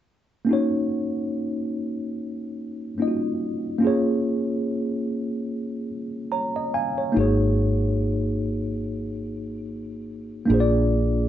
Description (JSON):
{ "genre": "R&B", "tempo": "72 BPM", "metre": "4/4", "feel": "swing 56% on 16ths", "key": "Eb minor", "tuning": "A4 = 437 Hz", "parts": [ { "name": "tine electric piano", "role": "accompaniment", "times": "0.4-11.3 s", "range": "Bb3 to Bb5", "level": "-23 LUFS", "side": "equal", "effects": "medium stereo tremolo" }, { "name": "woody fretless electric bass", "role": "bass", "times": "7.2-11.3 s", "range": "Ab1 to Bb1", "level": "-24 LUFS", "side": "equal", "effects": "none" } ], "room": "moderate studio reverb, RT60 0.5 s", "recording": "band playing live in one room, nothing above 7.9 kHz", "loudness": "-22 LUFS", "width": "side -11 dB against mid", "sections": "0.5-11.3 A section", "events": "tine electric piano fill 5.9-7.2", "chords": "0.5 Ebm7; 3.8 Db6; 7.2 Ab9sus4; 10.5 Bb7" }